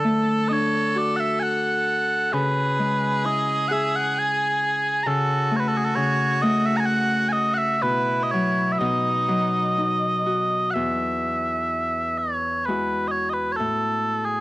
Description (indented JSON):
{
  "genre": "celtic folk, Celtic slow air",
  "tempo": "60-69 BPM",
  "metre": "3/4",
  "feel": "rubato",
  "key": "E major",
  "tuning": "A4 = 441 Hz",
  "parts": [
    { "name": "mellow small bagpipes", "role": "melody", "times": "0.0-14.4 s", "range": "G#4 to A#5", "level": "-22 LUFS", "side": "right 1 dB", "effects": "none" },
    { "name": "rich fiddle", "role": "second line", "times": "0.0-10.2 s", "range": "D#4 to A4", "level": "-30 LUFS", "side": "right 1 dB", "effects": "cassette tape" },
    { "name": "Celtic harp", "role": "accompaniment", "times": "0.0-14.4 s", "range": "E2 to G#4", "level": "-25 LUFS", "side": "left 1 dB", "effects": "cassette tape" }
  ],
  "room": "moderate small room reverb, RT60 0.5 s",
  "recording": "home recording on cassette",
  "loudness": "-20 LUFS",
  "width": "side -19 dB against mid",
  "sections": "0.0-10.8 A section; 10.8-14.4 B section",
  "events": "none",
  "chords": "0.0 D; 2.3 C#m7; 5.1 F#m/C#; 7.8 Bsus4; 8.8 B; 10.8 Eadd9; 13.6 A5"
}